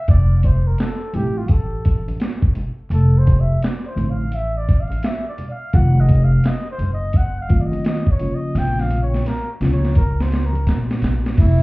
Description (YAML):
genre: hip hop, jazz-hop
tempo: 85 BPM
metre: 4/4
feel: swing 63% on 16ths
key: unclear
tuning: A4 = 440 Hz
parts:
  - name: breathy flugelhorn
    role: melody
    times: 0.0-11.6 s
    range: E4 to G5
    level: -28 LUFS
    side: equal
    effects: analog delay
  - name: upright bass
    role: bass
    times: 0.1-11.6 s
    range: F1 to Bb2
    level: -17 LUFS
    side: equal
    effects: none
  - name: boom bap sampler-style drum kit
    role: drums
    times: 0.1-11.6 s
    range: crash cymbal, hi-hat, kick drum, snare drum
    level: -18 LUFS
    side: equal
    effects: none
  - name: egg shaker and congas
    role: percussion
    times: 0.1-11.6 s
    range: none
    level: -30 LUFS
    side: right 1 dB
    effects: none
  - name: mellow tine electric piano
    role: accompaniment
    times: 1.1-11.6 s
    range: Db3 to F4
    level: -23 LUFS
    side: equal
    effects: medium stereo tremolo
  - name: vibraphone with soft mallets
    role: second line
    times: 11.4-11.6 s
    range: E5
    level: -26 LUFS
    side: equal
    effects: none
room: little or no reverb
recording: heard muffled through a wall, club reverb, vinyl crackle, EQ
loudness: -16 LUFS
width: side -22 dB against mid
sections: 0.0-11.4 A section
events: flugelhorn solo 0.0-11.4; drum fill 8.6-11.4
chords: 0.1 F; 2.9 Dm/F; 5.7 F7b9; 8.6 Bbm